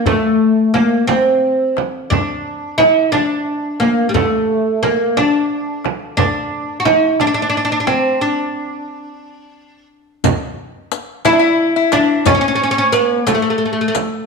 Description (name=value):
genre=Persian modal ensemble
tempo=59 BPM (dotted quarters)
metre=6/8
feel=straight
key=D dastgah homayun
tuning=A4 = 441 Hz
part: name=oud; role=melody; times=0.0-13.9 s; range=G3 to F#4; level=-14 LUFS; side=equal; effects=none
part: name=frame drum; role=percussion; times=0.1-14.1 s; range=none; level=-21 LUFS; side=right 9 dB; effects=none
part: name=tombak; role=percussion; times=0.1-14.1 s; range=none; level=-24 LUFS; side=left 6 dB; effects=none
part: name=riq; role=percussion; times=10.2-14.1 s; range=none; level=-26 LUFS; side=left 11 dB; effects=none
part: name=lap resonator guitar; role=second line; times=11.3-14.0 s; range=A3 to E4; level=-19 LUFS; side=left 8 dB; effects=none
room=wet echo chamber reverb, RT60 1.3 s, small room ambience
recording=1960s-style stereo with parts hard left and right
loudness=-13 LUFS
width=side -4 dB against mid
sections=0.0-10.2 A section; 10.2-14.3 B section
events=break 8.2-10.2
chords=none